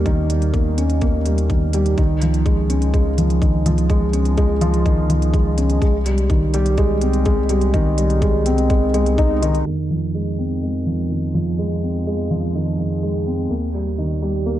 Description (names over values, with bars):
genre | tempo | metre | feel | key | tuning
piano and strings electronica | 125 BPM | 4/4 | straight | F minor | A4 = 436 Hz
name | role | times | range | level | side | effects
felt-muted upright piano | riff | 0.0-14.6 s | Eb3 to Eb4 | -19 LUFS | right 1 dB | low-pass filter, tape echo
warm sub bass | bass | 0.0-14.6 s | C2 to F2 | -21 LUFS | equal | sidechain pumping
electronic hi-hat | drums | 0.1-9.6 s | none | -35 LUFS | right 1 dB | none
electronic kick drum | drums | 0.1-9.3 s | none | -18 LUFS | equal | none
room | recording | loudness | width
light reverb, digital ambience | dark, warm production, low-pass filter | -16 LUFS | side -13 dB against mid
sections
0.0-9.7 A section; 9.7-14.6 B section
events
filter sweep 9.7-14.6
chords
0.0 Eb7; 2.0 Dbadd9; 5.8 Abmaj7/C; 9.7 Fm7; 13.5 Eb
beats
| 0.06 0.54 1.02 1.50 | 1.98 2.46 2.94 3.42 | 3.90 4.38 4.86 5.34 | 5.82 6.30 6.78 7.26 | 7.74 8.22 8.70 9.18 | 9.66 10.14 10.62 11.10 | 11.58 12.06 12.54 13.02 | 13.50 13.98 14.46